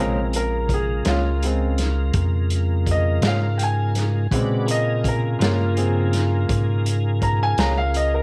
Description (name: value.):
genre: slow blues.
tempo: 55 BPM (dotted quarters).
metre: 12/8.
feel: straight.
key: unclear.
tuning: A4 = 439 Hz.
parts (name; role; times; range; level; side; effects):
bright upright piano; accompaniment; 0.0-8.2 s; Db3 to Bb5; -27 LUFS; equal; none.
electric guitar through a small old amp; accompaniment; 0.0-7.8 s; Bb2 to F4; -32 LUFS; equal; tremolo.
tonewheel organ; sustained chords; 0.0-8.2 s; Db3 to D5; -30 LUFS; equal; chorus vibrato, slow rotary speaker.
punchy sub bass; bass; 0.0-8.2 s; Bb1 to Bb2; -24 LUFS; equal; none.
vintage drum kit; drums; 0.3-8.1 s; hi-hat, kick drum, snare drum; -29 LUFS; equal; none.
room: small room ambience.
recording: none.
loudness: -21 LUFS.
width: mono.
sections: 0.0-8.2 A section.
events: upright piano solo 0.0-8.2.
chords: 0.0 Bbm7.